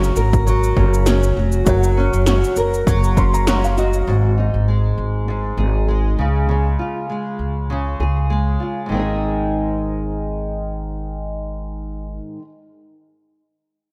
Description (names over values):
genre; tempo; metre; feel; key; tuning
acoustic pop; 100 BPM; 4/4; swing 55% on 16ths; Ab mixolydian; A4 = 440 Hz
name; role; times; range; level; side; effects
felt-muted upright piano; accompaniment; 0.0-4.1 s; Gb4 to C6; -28 LUFS; equal; ensemble chorus
nylon-string guitar; accompaniment; 0.0-12.5 s; Ab2 to Bb4; -24 LUFS; equal; double-tracked
upright bass; bass; 0.0-12.2 s; F1 to Db2; -21 LUFS; equal; none
80s electronic pad drums; drums; 0.0-4.1 s; kick drum, shaker, snare drum; -23 LUFS; equal; none
room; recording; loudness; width
moderate lush hall reverb, RT60 2.1 s; dreamy mix soaked in reverb; -19 LUFS; mono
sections
0.0-4.1 A section; 4.1-8.9 B section; 8.9-11.3 C section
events
felt piano fill 2.9-4.1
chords
0.0 Gb; 4.1 Ab5; 6.2 Db; 8.9 Ab